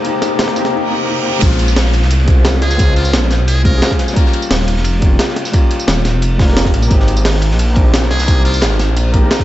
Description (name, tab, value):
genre	liquid drum and bass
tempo	175 BPM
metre	4/4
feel	straight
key	Bb dorian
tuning	A4 = 440 Hz
part	felt-muted upright piano	accompaniment	0.0-9.4 s	G3 to Bb4	-19 LUFS	left 2 dB	tape echo
part	breakbeat sampler-style drum kit	drums	0.0-9.4 s	crash cymbal, hi-hat, snare drum, tambourine	-19 LUFS	equal	none
part	riser, reverse cymbal and downlifter	sound effects	0.0-4.2 s	none	-23 LUFS	right 2 dB	none
part	crunchy breakbeat drum kit	drums	0.1-9.4 s	hi-hat, ride cymbal, snare drum	-25 LUFS	equal	high-pass filter on cymbals, high-pass filter on hats, high-pass filter on snare, high-pass filter on room
part	swelling detuned saw bass	bass	1.4-9.3 s	Eb1 to Db2	-14 LUFS	equal	none
part	electronic kick drum	drums	1.4-9.4 s	none	-12 LUFS	equal	none
part	trumpet with metal mute	melody	2.6-3.9, 8.1-8.7 s	F4 to Bb4	-22 LUFS	equal	ping-pong delay
room	light reverb, small room ambience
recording	dark, warm production, nothing above 7.9 kHz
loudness	-11 LUFS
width	side -14 dB against mid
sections	0.0-1.4 A section; 1.4-9.4 B section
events	build-up 0.0-1.4; riser 0.0-0.7; reverse cymbal 0.7-1.4; drop 1.4-9.4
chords	0.0 Eb6/Bb; 1.4 Bbm9; 4.2 Eb9; 6.9 Abmaj9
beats	| 0.05 0.39 0.73 1.08 | 1.42 1.76 2.11 2.45 | 2.79 3.13 3.48 3.82 | 4.16 4.51 4.85 5.19 | 5.54 5.88 6.22 6.56 | 6.91 7.25 7.59 7.93 | 8.28 8.62 8.96 9.31